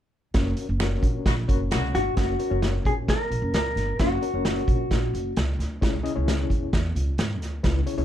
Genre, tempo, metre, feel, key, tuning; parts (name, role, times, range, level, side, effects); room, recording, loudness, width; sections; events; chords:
uptempo 1960s-style soul; 132 BPM; 4/4; straight; A4 = 440 Hz
overdriven reed electric piano; accompaniment; 0.3-8.0 s; C#3 to D#5; -31 LUFS; left 5 dB; fast tremolo
upright bass; bass; 0.3-8.0 s; F#1 to G#2; -27 LUFS; equal
vintage drum kit; drums; 0.3-8.0 s; hi-hat, kick drum, snare drum; -26 LUFS; equal
finger snap; percussion; 0.8-1.8 s; -37 LUFS; right 7 dB
warm horn section; second line; 1.3-2.0 s; C#3 to F#4; -32 LUFS; left 1 dB
mellow electric guitar; melody; 1.9-5.3 s; F#4 to A#4; -27 LUFS; left 1 dB
little or no reverb; dark, warm production; -22 LUFS; side -11 dB against mid
0.3-2.2 A section; 2.2-8.0 B section
0.3 F#; 5.8 C#m